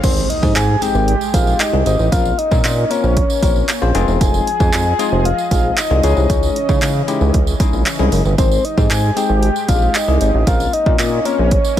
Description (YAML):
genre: dance-pop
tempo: 115 BPM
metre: 4/4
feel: straight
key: Ab major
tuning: A4 = 443 Hz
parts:
  - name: soft octave-layered synth lead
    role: melody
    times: 0.0-11.8 s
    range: C5 to Ab5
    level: -19 LUFS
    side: left 1 dB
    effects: chorus, digital delay
  - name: bell-like tine electric piano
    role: accompaniment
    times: 0.0-11.8 s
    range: Ab3 to C5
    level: -23 LUFS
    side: left 7 dB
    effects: sidechain pumping
  - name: lush unison pad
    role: sustained chords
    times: 0.0-11.8 s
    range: Db3 to Eb5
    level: -27 LUFS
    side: right 1 dB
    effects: chorus, sidechain pumping
  - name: chorused synth bass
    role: bass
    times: 0.0-11.8 s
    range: Fb1 to Db3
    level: -16 LUFS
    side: right 1 dB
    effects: sidechain pumping
  - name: punchy analog drum machine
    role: drums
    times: 0.0-11.8 s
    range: crash cymbal, handclaps, hi-hat, kick drum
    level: -18 LUFS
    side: right 1 dB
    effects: overdrive
  - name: tambourine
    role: percussion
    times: 0.0-11.8 s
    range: none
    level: -31 LUFS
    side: right 11 dB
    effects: none
  - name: swell and impact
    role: sound effects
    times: 0.0-2.1 s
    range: none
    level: -27 LUFS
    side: right 1 dB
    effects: none
room: little or no reverb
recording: none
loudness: -13 LUFS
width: side -11 dB against mid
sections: 0.0-11.8 A section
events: impact 0.0-2.1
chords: 0.0 Abmaj7; 2.1 Bbmadd9; 3.9 Fm7; 6.0 Dbmadd9; 8.4 Abmaj7; 10.5 Bbmadd9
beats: | 0.04 0.56 1.08 1.60 | 2.12 2.65 3.17 3.69 | 4.21 4.73 5.25 5.78 | 6.30 6.82 7.34 7.86 | 8.38 8.90 9.43 9.95 | 10.47 10.99 11.51